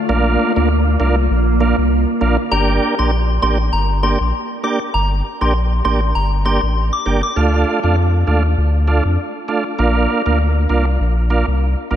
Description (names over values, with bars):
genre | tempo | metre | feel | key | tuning
dancehall | 99 BPM | 4/4 | swing 56% on 16ths | G minor | A4 = 440 Hz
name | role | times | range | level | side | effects
glassy FM pad | sustained chords | 0.0-2.5 s | D3 to F4 | -22 LUFS | equal | ensemble chorus, built-in reverb
tonewheel organ | accompaniment | 0.1-12.0 s | A3 to G4 | -19 LUFS | right 2 dB | chorus vibrato
warm sub bass | bass | 0.1-12.0 s | G1 to F2 | -16 LUFS | equal | none
soft synth bell | melody | 2.5-7.3 s | Bb5 to D6 | -22 LUFS | left 2 dB | chorus, phaser, ping-pong delay
room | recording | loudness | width
moderate lush hall reverb, RT60 3.0 s | dreamy mix soaked in reverb | -14 LUFS | side -10 dB against mid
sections
0.0-2.5 A section; 2.5-12.0 B section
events
none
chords
0.1 Bb; 2.5 Gm; 7.4 Dm; 9.8 Bb